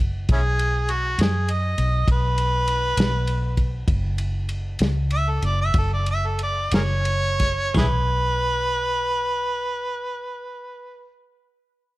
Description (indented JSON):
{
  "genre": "slow blues",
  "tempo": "57-67 BPM (dotted quarters)",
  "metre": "12/8",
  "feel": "straight",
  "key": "unclear",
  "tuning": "A4 = 440 Hz",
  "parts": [
    { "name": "vintage muted fingered electric bass", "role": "bass", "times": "0.0-11.1 s", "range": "F#1 to F#2", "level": "-23 LUFS", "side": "equal", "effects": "none" },
    { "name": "warm harmonica", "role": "melody", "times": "0.3-11.1 s", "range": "C#4 to E5", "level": "-24 LUFS", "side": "right 1 dB", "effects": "overdrive, plate reverb" },
    { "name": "warm soul drum kit", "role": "drums", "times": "0.3-7.9 s", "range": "kick drum, ride cymbal, snare drum, splash cymbal, toms", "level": "-23 LUFS", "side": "equal", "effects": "none" }
  ],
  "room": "light reverb",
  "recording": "dark, warm production",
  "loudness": "-20 LUFS",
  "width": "side -18 dB against mid",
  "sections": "0.0-7.7 A section; 7.7-11.9 B section",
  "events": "harmonica solo 0.0-7.7; slowing down 2.7-7.7",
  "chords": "0.3 B5; 3.9 F#5; 7.7 N.C.",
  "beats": "| 0.29 1.18 2.08 2.97 | 3.87 4.79 5.74 6.72 | 7.74 8.79 9.84 10.89"
}